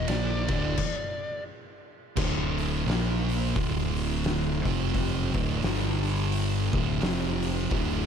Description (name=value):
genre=stoner and doom metal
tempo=87 BPM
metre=4/4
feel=swing 58% on 8ths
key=D minor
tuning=A4 = 443 Hz
part: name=fuzz lead guitar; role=melody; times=0.0-1.4 s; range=D5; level=-35 LUFS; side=left 2 dB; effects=wah, distortion, tape echo
part: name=phased string machine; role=sustained chords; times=0.0-8.1 s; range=D3 to C5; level=-40 LUFS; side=equal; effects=none
part: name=thick fuzz guitar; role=riff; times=0.0-8.1 s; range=D2 to Bb3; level=-32 LUFS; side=left 9 dB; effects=distortion
part: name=thick fuzz guitar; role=riff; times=0.0-8.1 s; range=D2 to Bb3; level=-30 LUFS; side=right 12 dB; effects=distortion
part: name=growling fingered electric bass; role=bass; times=0.0-8.1 s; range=D1 to Bb1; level=-31 LUFS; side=equal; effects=overdrive
part: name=oversized low-tuned drum kit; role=drums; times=0.1-7.9 s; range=crash cymbal, hi-hat, kick drum, ride cymbal, snare drum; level=-31 LUFS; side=left 1 dB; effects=none
room=light reverb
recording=dark, warm production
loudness=-25 LUFS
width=side -7 dB against mid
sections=0.0-2.2 A section; 2.2-8.1 B section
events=stop 0.8-2.2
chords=0.1 Dm; 1.5 N.C.; 2.2 D5; 2.9 Bb5; 3.6 D5; 4.6 F5; 5.3 D5; 5.6 G5; 6.7 D5; 7.0 F5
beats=0.08 0.78 1.47 | 2.17 2.86 3.56 4.25 | 4.94 5.63 6.33 7.02 | 7.71